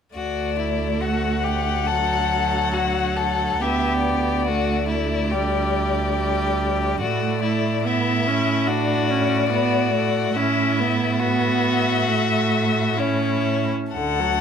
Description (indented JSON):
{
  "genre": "classical, slow romantic movement for string quartet",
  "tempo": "70 BPM",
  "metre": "4/4",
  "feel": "rubato",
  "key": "D major",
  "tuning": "A4 = 440 Hz",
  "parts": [
    { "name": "warm violin", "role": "melody", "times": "0.1-14.4 s", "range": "C#5 to F#5", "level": "-25 LUFS", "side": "left 9 dB", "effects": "none" },
    { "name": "clear violin", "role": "second line", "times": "0.1-14.4 s", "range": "E4 to A4", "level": "-25 LUFS", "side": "left 3 dB", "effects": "none" },
    { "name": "warm cello", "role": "bass", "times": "0.1-14.4 s", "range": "D2 to A2", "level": "-25 LUFS", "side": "right 5 dB", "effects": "none" },
    { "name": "rich viola", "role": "accompaniment", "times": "0.2-14.4 s", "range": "D3 to D4", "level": "-24 LUFS", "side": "right 2 dB", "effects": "none" }
  ],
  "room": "moderate large studio reverb, RT60 1.1 s",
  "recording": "minimal, uncompressed stereo recording",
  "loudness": "-19 LUFS",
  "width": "side -7 dB against mid",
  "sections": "0.2-14.0 A section",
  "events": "none",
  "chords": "0.2 D; 3.6 Em7/D; 7.0 D/A; 10.4 A"
}